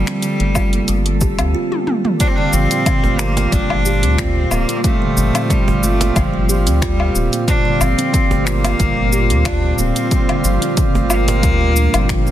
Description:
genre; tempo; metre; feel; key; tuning
organic downtempo; 91 BPM; 4/4; swing 54% on 16ths; G minor; A4 = 440 Hz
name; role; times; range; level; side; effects
clear cello; melody; 0.0-12.3 s; F3 to D4; -21 LUFS; left 1 dB; tape echo
ethereal airy pad; sustained chords; 0.0-12.3 s; Bb2 to A4; -26 LUFS; equal; ensemble chorus, built-in reverb, vintage 12-bit sampler grit, sidechain pumping
kalimba; arpeggios; 0.0-12.3 s; D3 to G4; -21 LUFS; right 2 dB; ping-pong delay
round analog bass; bass; 0.0-12.3 s; D1 to D2; -18 LUFS; equal; sidechain pumping
drifting glass-harmonics texture; texture; 0.0-1.5 s; A4; -37 LUFS; right 5 dB; chorus, built-in reverb
deep house drum kit; drums; 0.1-12.3 s; finger snaps, hi-hat, shaker, toms, woodblock; -22 LUFS; left 2 dB; overdrive, soft clipping on snare
cajon; percussion; 0.1-11.4 s; none; -27 LUFS; right 3 dB; none
electronic kick drum; drums; 0.6-12.2 s; none; -18 LUFS; equal; overdrive
hand-pumped harmonium; accompaniment; 2.2-12.3 s; G3 to F4; -24 LUFS; right 3 dB; sidechain pumping, ping-pong delay
room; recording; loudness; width
light reverb, studio ambience; dense, heavily limited modern master; -13 LUFS; side -12 dB against mid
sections
0.0-2.2 A section; 2.2-12.3 B section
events
drum fill 1.7-2.2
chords
0.0 Gm9; 2.2 Gm7

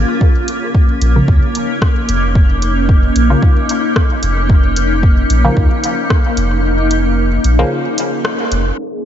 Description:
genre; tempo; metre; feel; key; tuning
dub techno; 112 BPM; 4/4; swing 55% on 16ths; Bb minor; A4 = 444 Hz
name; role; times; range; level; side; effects
granular cloud pad; sustained chords; 0.0-9.1 s; Bb3 to F4; -17 LUFS; left 1 dB; built-in reverb, analog chorus, sidechain pumping
soft dub sub bass; bass; 0.0-8.7 s; F1 to Eb2; -15 LUFS; equal; sidechain pumping
electronic kick drum; drums; 0.2-6.2 s; none; -11 LUFS; equal; overdrive, studio reverb
punchy analog drum machine; drums; 0.5-8.6 s; hi-hat, rim click; -24 LUFS; equal; overdrive, studio reverb, dub echo
filtered dub chord stab; stabs; 1.2-7.9 s; Db3 to Bb3; -22 LUFS; equal; chorus, phaser, sidechain pumping, dub echo
bubbling stepped-filter texture; texture; 8.8-9.1 s; Ab4; -28 LUFS; left 5 dB; built-in reverb, lush chorus, sidechain pumping
room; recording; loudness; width
light reverb; low-pass filter, nothing above 7.7 kHz; -11 LUFS; side -10 dB against mid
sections
0.0-8.8 A section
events
filter sweep on synth stab 0.0-8.8; break 6.6-8.8; band accent 8.2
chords
0.0 Bbm

